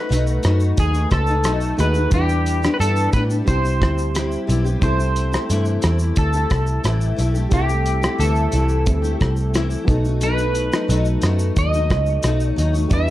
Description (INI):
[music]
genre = indie pop, bedroom pop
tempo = 89 BPM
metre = 4/4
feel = straight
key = C major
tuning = A4 = 439 Hz
[part]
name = electric guitar at the edge of break-up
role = melody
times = 0.0-13.1 s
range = G4 to E5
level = -24 LUFS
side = equal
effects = analog chorus, analog delay
[part]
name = picked steel-string acoustic guitar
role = accompaniment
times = 0.0-13.1 s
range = B2 to G4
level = -26 LUFS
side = left 5 dB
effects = ensemble chorus, vibrato effect
[part]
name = soft electric-piano-like synth keys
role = accompaniment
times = 0.0-13.1 s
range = F#3 to B4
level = -27 LUFS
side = right 3 dB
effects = chorus
[part]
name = vintage muted picked electric bass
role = bass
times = 0.1-13.1 s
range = A1 to A2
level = -19 LUFS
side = equal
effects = none
[part]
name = cloth-damped thuddy drum kit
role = drums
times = 0.1-13.1 s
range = hi-hat, kick drum, rim click, shaker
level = -22 LUFS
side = equal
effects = none
[sound]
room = light reverb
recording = dark, warm production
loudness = -16 LUFS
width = side -15 dB against mid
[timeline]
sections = 0.0-4.8 A section; 4.8-13.1 A section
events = none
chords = 0.0 B7; 2.1 Em7; 3.5 Cmaj7; 4.8 C6; 9.9 B7